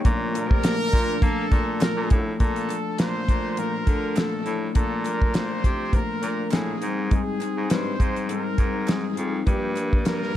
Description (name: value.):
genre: indie pop, bedroom pop.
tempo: 102 BPM.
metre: 4/4.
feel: swing 55% on 16ths.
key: Bb major.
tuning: A4 = 440 Hz.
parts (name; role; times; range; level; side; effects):
mellow electric guitar; accompaniment; 0.0-10.4 s; G2 to Eb4; -28 LUFS; left 4 dB; analog chorus, vibrato effect.
warm analog pad; sustained chords; 0.0-2.4 s; Bb2 to D4; -34 LUFS; right 1 dB; chorus.
damped 70s drum kit; drums; 0.0-10.3 s; hi-hat, kick drum, snare drum; -23 LUFS; equal; none.
clear baritone saxophone; bass; 0.1-10.3 s; F2 to Bb3; -29 LUFS; equal; none.
warm trumpet; melody; 0.3-10.4 s; G4 to C5; -30 LUFS; right 1 dB; wide subtle chorus, dub echo.
group handclap; percussion; 0.6-10.2 s; none; -45 LUFS; right 8 dB; none.
room: light reverb.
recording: echo-heavy mix.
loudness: -21 LUFS.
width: side -12 dB against mid.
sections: 0.0-2.4 A section; 2.4-10.4 B section.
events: none.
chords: 0.0 Bbmaj7; 6.8 Abmaj7; 9.5 Gm7.